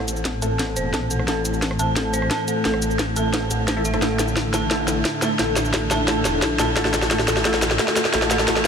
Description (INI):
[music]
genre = dark technical drum and bass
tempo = 175 BPM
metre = 4/4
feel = straight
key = A minor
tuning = A4 = 440 Hz
[part]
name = dark analog pad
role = sustained chords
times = 0.0-8.7 s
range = A3 to E5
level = -27 LUFS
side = left 1 dB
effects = chorus, sidechain pumping
[part]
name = dark detuned synth bell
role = arpeggios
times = 0.0-8.7 s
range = A4 to A5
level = -26 LUFS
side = right 1 dB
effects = chorus, sidechain pumping, low-pass filter, analog delay
[part]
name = snarling distorted saw bass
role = bass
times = 0.0-8.7 s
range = E1 to Bb1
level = -27 LUFS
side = equal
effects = overdrive
[part]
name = drum and bass drum kit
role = drums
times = 0.1-8.7 s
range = cabasa, hi-hat, rim click, snare drum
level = -22 LUFS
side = equal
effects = none
[part]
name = electronic kick drum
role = drums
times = 0.3-8.5 s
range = none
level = barely audible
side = none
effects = none
[part]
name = orchestra-hit-like synth stab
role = stabs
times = 0.4-8.7 s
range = A3 to A4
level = -27 LUFS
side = equal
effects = built-in reverb, phaser, analog delay
[sound]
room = wet huge ambient reverb, RT60 7.4 s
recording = dreamy mix soaked in reverb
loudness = -18 LUFS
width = side -6 dB against mid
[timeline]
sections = 0.0-8.7 A section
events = build-up 0.0-8.7; drum fill 0.0-8.7; filter sweep on analog synth pad 0.0-8.7; filter sweep on synth bell 0.0-8.7; filter sweep on synth stab 0.0-8.7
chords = 0.0 Am